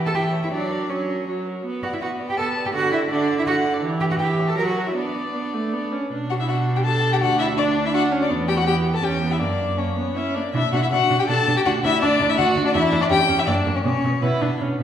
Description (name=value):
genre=quick classical-period movement for string quartet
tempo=162 BPM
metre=3/4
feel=rubato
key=B minor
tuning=A4 = 440 Hz
part: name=dark violin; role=melody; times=0.0-14.6 s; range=G4 to A5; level=-25 LUFS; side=left 5 dB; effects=none
part: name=warm viola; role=accompaniment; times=0.0-14.8 s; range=D3 to E4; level=-25 LUFS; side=right 2 dB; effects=none
part: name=dark violin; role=second line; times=0.1-14.6 s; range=B3 to A#5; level=-25 LUFS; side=left 1 dB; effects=none
part: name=rich cello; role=bass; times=0.1-14.8 s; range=D2 to A#4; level=-24 LUFS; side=right 2 dB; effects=none
room=wet recital hall reverb, RT60 1.5 s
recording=recorded in a church or concert hall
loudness=-19 LUFS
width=side -9 dB against mid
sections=0.0-6.1 A section; 6.1-14.8 A section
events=none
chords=0.1 C#dim/E; 0.5 F#; 1.6 Bm; 2.7 D; 3.8 Em; 4.2 C#dim/E; 4.6 F#7; 5.0 Bm; 7.2 Dmaj9; 8.3 E5; 9.0 C#dim/E; 9.4 F#; 10.5 Bm; 11.7 Dadd9; 12.7 Dsus2/E; 13.1 C#dim; 13.5 F#; 13.8 Bm